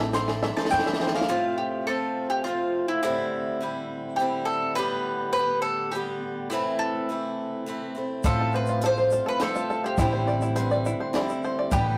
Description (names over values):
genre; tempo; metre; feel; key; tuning
indie folk with a building arrangement; 104 BPM; 3/4; straight; unclear; A4 = 441 Hz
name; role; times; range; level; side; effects
bowl-back mandolin; melody; 0.0-12.0 s; E4 to C6; -30 LUFS; equal; none
dark upright piano; accompaniment; 0.0-1.3, 8.2-12.0 s; A1 to D5; -40 LUFS; equal; none
picked swing-style acoustic guitar; accompaniment; 0.0-12.0 s; A2 to A4; -32 LUFS; equal; none
tonewheel organ; sustained chords; 0.0-12.0 s; A2 to G4; -41 LUFS; equal; slow rotary speaker, chorus vibrato
bluegrass banjo; arpeggios; 0.0-1.3, 8.3-12.0 s; E4 to E5; -33 LUFS; equal; none
upright bass; bass; 0.0-1.2, 8.2-12.0 s; A1 to E2; -31 LUFS; equal; none
compact cocktail drum kit; drums; 0.1-1.4, 8.2-11.9 s; hi-hat, kick drum, snare drum; -30 LUFS; equal; none
tube shaker; percussion; 0.1-1.2, 8.2-11.9 s; none; -50 LUFS; equal; none
room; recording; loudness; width
wet small room reverb, RT60 0.5 s; rough rehearsal-room recording, tube saturation; -26 LUFS; mono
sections
0.0-1.3 A section; 1.3-12.0 B section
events
build-up 0.0-1.3; drum fill 0.0-1.3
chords
0.0 Am; 1.3 F/A; 3.0 Cadd9/A; 4.8 G/A; 6.5 Am; 8.2 F/A; 10.0 Cadd9/A